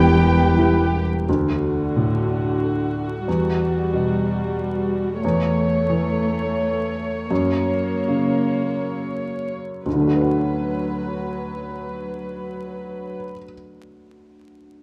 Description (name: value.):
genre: cinematic.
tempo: 62-93 BPM.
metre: 3/4.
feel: rubato.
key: D major.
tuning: A4 = 444 Hz.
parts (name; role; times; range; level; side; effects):
warm studio violin section; melody; 0.0-1.1 s; G5; -30 LUFS; equal; none.
large flute ensemble; second line; 0.0-0.9 s; G5; -32 LUFS; equal; none.
warm clarinet; second line; 0.0-0.9 s; E4; -31 LUFS; equal; none.
warm oboe; second line; 0.0-0.9 s; B4; -30 LUFS; equal; none.
warm studio violin section; second line; 0.0-1.0 s; G4; -32 LUFS; equal; none.
dark studio viola section; accompaniment; 0.0-13.2 s; D3 to C#5; -27 LUFS; equal; none.
felt-muted upright piano; accompaniment; 0.0-14.8 s; E1 to F#5; -25 LUFS; equal; none.
dark French horn section; sustained chords; 0.0-0.9 s; G3 to E4; -28 LUFS; equal; none.
warm studio cello section; bass; 0.0-1.1 s; E2; -25 LUFS; equal; none.
warm studio double bass section; bass; 0.0-1.1 s; E1; -25 LUFS; equal; none.
room: wet scoring stage reverb, RT60 1.7 s.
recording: vinyl crackle.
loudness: -22 LUFS.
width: mono.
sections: 0.0-1.3 A section; 1.3-9.9 B section; 9.9-14.8 C section.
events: slowing down 4.2-9.9.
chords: 0.0 Em; 1.3 D; 3.3 Emadd9; 5.2 A/E; 7.3 F#; 9.9 D6.